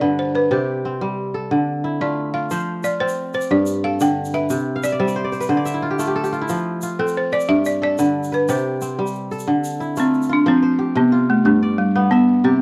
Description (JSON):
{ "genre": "west african traditional, West African string and xylophone music", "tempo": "121 BPM (dotted quarters)", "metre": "12/8", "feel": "straight", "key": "F lydian", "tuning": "A4 = 439 Hz", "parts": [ { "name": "balafon", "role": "melody", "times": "0.0-12.6 s", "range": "G3 to G5", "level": "-21 LUFS", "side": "equal", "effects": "none" }, { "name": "kora", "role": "arpeggios", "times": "0.0-12.6 s", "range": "G2 to F5", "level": "-23 LUFS", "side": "equal", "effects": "none" }, { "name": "egg shaker", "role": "percussion", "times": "2.5-10.3 s", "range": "none", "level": "-41 LUFS", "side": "equal", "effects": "none" } ], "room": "little or no reverb", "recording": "dry, close 1970s-style studio recording", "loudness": "-20 LUFS", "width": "mono", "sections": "0.0-10.5 A section; 10.5-12.6 B section", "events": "kora fill 4.7-6.5", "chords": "0.0 G; 0.5 C5; 1.5 Dm; 2.5 F5; 3.5 G; 4.5 C; 5.5 D5; 6.5 F5; 7.5 G; 8.5 C5; 9.5 Dm; 10.5 F5; 11.5 G", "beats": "0.01 | 0.51 1.01 1.51 2.01 | 2.51 3.00 3.50 4.00 | 4.50 5.00 5.50 5.99 | 6.49 6.99 7.49 7.98 | 8.48 8.98 9.47 9.97 | 10.47 10.96 11.46 11.96 | 12.45" }